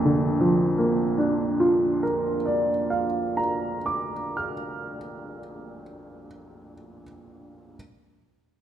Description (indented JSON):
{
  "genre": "classical, romantic character piece for solo piano",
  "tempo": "37 BPM (dotted quarters)",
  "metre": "6/8",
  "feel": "rubato",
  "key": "Bb major",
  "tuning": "A4 = 440 Hz",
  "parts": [
    { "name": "clear upright piano", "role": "solo", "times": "0.0-7.8 s", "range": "Bb1 to F6", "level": "-23 LUFS", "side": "right 1 dB", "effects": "none" }
  ],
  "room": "moderate scoring stage reverb, RT60 1.7 s",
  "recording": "minimal, uncompressed stereo recording",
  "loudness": "-22 LUFS",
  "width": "side -10 dB against mid",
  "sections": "0.0-5.6 A section",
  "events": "none",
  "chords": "0.0 Bb"
}